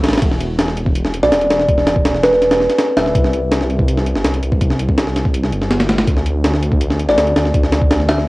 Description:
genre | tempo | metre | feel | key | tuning
drum and bass, jungle | 164 BPM | 4/4 | straight | E minor | A4 = 440 Hz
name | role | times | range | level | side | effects
dark detuned saw bass | bass | 0.0-8.3 s | D1 to D2 | -19 LUFS | equal | tube saturation
breakbeat sampler-style drum kit | drums | 0.0-8.3 s | hi-hat, kick drum, snare drum | -16 LUFS | equal | cassette tape
kalimba | melody | 1.2-3.2, 7.1-8.3 s | B4 to E5 | -16 LUFS | equal | dub echo
room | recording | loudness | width
light reverb | home recording on cassette | -13 LUFS | side -21 dB against mid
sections
0.2-8.3 A section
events
drop 0.2-8.3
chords
0.2 E5; 3.1 C5; 6.1 D5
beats
| 0.22 0.59 0.95 1.32 | 1.69 2.05 2.42 2.78 | 3.15 3.51 3.88 4.25 | 4.61 4.98 5.34 5.71 | 6.08 6.44 6.81 7.17 | 7.54 7.91 8.27

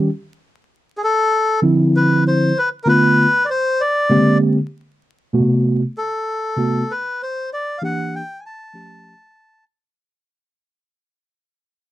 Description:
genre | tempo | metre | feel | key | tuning
hip hop | 97 BPM | 4/4 | swing 65% on 16ths | unclear | A4 = 440 Hz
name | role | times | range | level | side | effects
mellow tine electric piano | accompaniment | 0.0-9.1 s | B2 to G4 | -14 LUFS | right 1 dB | slow stereo tremolo
melodica | melody | 1.0-9.6 s | G#4 to A5 | -18 LUFS | left 1 dB | none
room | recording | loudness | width
light reverb | dry, close 1970s-style studio recording, vinyl crackle | -15 LUFS | side -14 dB against mid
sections
0.0-5.0 A section; 5.0-10.0 B section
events
fade-out 5.0-10.0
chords
0.1 Dm9; 2.6 Bm7b5; 3.8 Bb13; 5.0 Am69; 7.5 Em7b5; 8.7 A7b13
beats
| 0.08 0.70 1.32 1.94 | 2.56 3.18 3.79 4.41 | 5.03 5.65 6.27 6.89 | 7.51 8.12 8.74 9.36

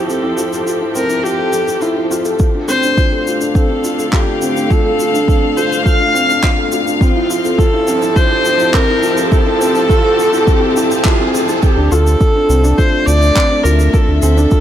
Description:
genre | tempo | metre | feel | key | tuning
piano and strings electronica | 104 BPM | 4/4 | straight | D minor | A4 = 440 Hz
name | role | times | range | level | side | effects
warm viola | melody | 0.0-14.6 s | F4 to F5 | -16 LUFS | equal | none
dark chamber string section | sustained chords | 0.0-14.6 s | D3 to A5 | -21 LUFS | left 2 dB | sidechain pumping, low-pass filter
felt-muted upright piano | riff | 0.0-14.6 s | C4 to A4 | -18 LUFS | left 1 dB | digital delay
round analog bass | bass | 0.0-14.5 s | C2 to F2 | -18 LUFS | equal | sidechain pumping, high-pass filter
shaker and handclaps | drums | 0.1-14.6 s | none | -25 LUFS | equal | none
electronic kick drum | drums | 2.4-14.6 s | none | -13 LUFS | equal | none
riser | sound effects | 3.9-11.6 s | none | -24 LUFS | right 1 dB | none
room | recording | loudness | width
light reverb, small room ambience | none | -11 LUFS | side -10 dB against mid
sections
0.0-11.6 A section; 11.6-14.6 B section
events
build-up 0.0-11.6; riser 3.9-11.6; drop 11.6-14.6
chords
0.0 Fmaj7; 2.4 Dm7; 7.0 Fmaj7; 11.6 Dm7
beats
| 0.09 0.67 1.25 1.82 | 2.40 2.98 3.55 4.13 | 4.71 5.28 5.86 6.44 | 7.01 7.59 8.17 8.74 | 9.32 9.90 10.48 11.05 | 11.63 12.21 12.78 13.36 | 13.94 14.51

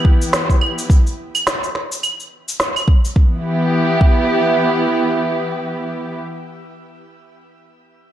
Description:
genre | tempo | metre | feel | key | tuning
organic downtempo | 106 BPM | 4/4 | swing 58% on 16ths | E minor pentatonic | A4 = 440 Hz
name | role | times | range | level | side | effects
muted studio string section | sustained chords | 0.0-6.2 s | E3 to G4 | -18 LUFS | equal | sidechain pumping, shimmer reverb
electronic kick drum | drums | 0.0-4.2 s | none | -12 LUFS | equal | none
electronic shaker, snare drum and claves | drums | 0.2-3.1 s | none | -19 LUFS | right 1 dB | none
room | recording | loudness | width
moderate echo chamber reverb, RT60 1.9 s | dark, warm production | -15 LUFS | side -12 dB against mid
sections
0.0-3.2 A section; 3.2-5.4 B section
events
none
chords
0.0 Em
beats
0.33 | 0.90 1.46 2.03 2.60 | 3.16 3.73 4.29 4.86

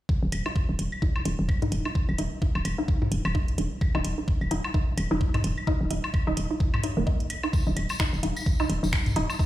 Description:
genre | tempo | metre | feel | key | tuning
minimal techno | 129 BPM | 4/4 | swing 58% on 16ths | unclear | A4 = 444 Hz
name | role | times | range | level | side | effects
resonant blip pluck | riff | 0.1-9.4 s | Bb3 to Eb4 | -32 LUFS | equal | analog chorus, sidechain pumping, ping-pong delay
electronic kick drum | drums | 0.1-9.5 s | none | -24 LUFS | equal | none
hollow knocking FM bass | bass | 0.2-9.3 s | Eb1 to Eb2 | -28 LUFS | equal | sidechain pumping
booming analog drum machine | drums | 0.3-9.3 s | finger snaps, hi-hat | -35 LUFS | right 1 dB | overdrive
electronic claves, woodblock and toms | percussion | 0.3-9.4 s | none | -32 LUFS | left 1 dB | ping-pong delay
tambourine | percussion | 7.5-9.5 s | none | -40 LUFS | left 4 dB | none
room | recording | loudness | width
light reverb | played on a big sound system in a bare room, stone room reverb | -24 LUFS | side -14 dB against mid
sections
0.1-9.5 A section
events
filter sweep on synth arpeggio sound 0.1-9.5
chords
0.1 Eb5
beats
| 0.09 0.56 1.02 1.49 | 1.95 2.42 2.88 3.35 | 3.81 4.28 4.74 5.21 | 5.67 6.14 6.60 7.07 | 7.53 8.00 8.46 8.93 | 9.39

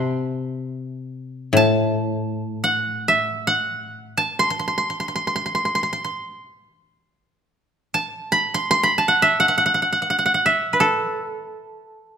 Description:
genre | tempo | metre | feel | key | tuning
japanese traditional, Japanese chamber music | free time | none | none | A kumoi | A4 = 438 Hz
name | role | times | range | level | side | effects
koto | melody | 0.0-12.2 s | A4 to C6 | -19 LUFS | right 1 dB | none
koto | accompaniment | 0.0-4.6 s | A2 to C3 | -23 LUFS | left 2 dB | none
room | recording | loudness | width
moderate recital hall reverb, RT60 1.4 s | none | -18 LUFS | side -7 dB against mid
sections
0.0-12.2 A section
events
none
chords
none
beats
free time

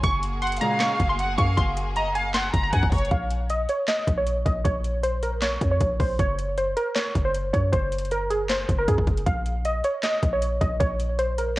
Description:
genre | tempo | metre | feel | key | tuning
hip hop, trap | 156 BPM | 4/4 | half-time | Bb minor | A4 = 445 Hz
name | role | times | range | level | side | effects
glassy wavetable pluck | melody | 0.0-11.6 s | Ab4 to Db6 | -26 LUFS | right 1 dB | chorus, low-pass filter, cassette tape, tape echo
clear symphonic string section | sustained chords | 0.0-3.1 s | Bb3 to Ab4 | -36 LUFS | left 1 dB | none
warm 808-style bass | bass | 0.0-11.6 s | Gb1 to Gb2 | -26 LUFS | equal | none
trap drum kit | drums | 0.0-11.6 s | handclaps, hi-hat, kick drum, snare drum | -27 LUFS | equal | overdrive, cassette tape
warm studio violin section | second line | 0.4-3.1 s | Db5 to Bb5 | -28 LUFS | equal | tape echo
resonant sweep polysynth | stabs | 0.6-0.9 s | Bb2 to Ab3 | -27 LUFS | equal | chorus
room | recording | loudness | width
little or no reverb | home recording on cassette | -21 LUFS | side -18 dB against mid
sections
0.0-3.1 A section; 3.1-11.6 B section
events
none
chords
0.0 Gbadd9; 3.1 Bbm; 6.2 Gb5; 9.3 Bbm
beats
| 0.04 0.42 0.81 1.19 | 1.57 1.96 2.34 2.73 | 3.11 3.50 3.88 4.27 | 4.65 5.04 5.42 5.80 | 6.19 6.57 6.96 7.34 | 7.73 8.11 8.50 8.88 | 9.27 9.65 10.04 10.42 | 10.80 11.19 11.57

